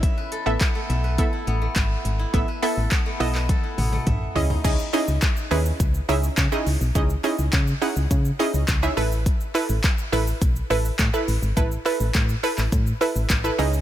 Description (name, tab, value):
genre	dance-pop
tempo	104 BPM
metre	4/4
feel	straight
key	unclear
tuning	A4 = 440 Hz
part	wide unison pluck	accompaniment	0.0-13.8 s	B3 to F#5	-25 LUFS	right 2 dB	sidechain pumping
part	steel-string zither	arpeggios	0.0-7.3 s	A3 to E5	-31 LUFS	left 2 dB	sidechain pumping, dub echo
part	solid FM bass	bass	0.0-13.8 s	G#1 to C#3	-23 LUFS	equal	sidechain pumping
part	deep house drum kit	drums	0.0-13.8 s	crash cymbal, handclaps, hi-hat, kick drum, shaker, toms	-24 LUFS	equal	none
part	group handclap	percussion	4.9-13.4 s	none	-40 LUFS	left 4 dB	none
room	little or no reverb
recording	none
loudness	-20 LUFS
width	side -12 dB against mid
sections	0.0-4.6 A section; 4.6-13.8 B section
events	drum fill 3.5-4.6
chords	0.0 Asus2; 4.4 C#madd9; 9.0 Asus2